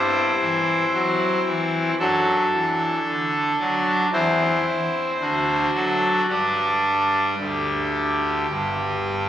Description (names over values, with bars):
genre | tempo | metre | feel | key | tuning
classical, chorale-style piece for pipe organ | 56 BPM | 4/4 | straight | unclear | A4 = 440 Hz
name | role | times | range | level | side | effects
pipe organ, trumpet | solo | 0.0-9.3 s | G1 to D5 | -19 LUFS | equal | none
room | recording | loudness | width
wet church reverb, RT60 2.9 s | recorded on a phone in the room, club ambience, compression | -19 LUFS | side -11 dB against mid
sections
0.0-9.3 A section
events
none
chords
0.0 C/G; 2.0 D/F#; 4.1 C/E; 5.2 D; 6.3 G5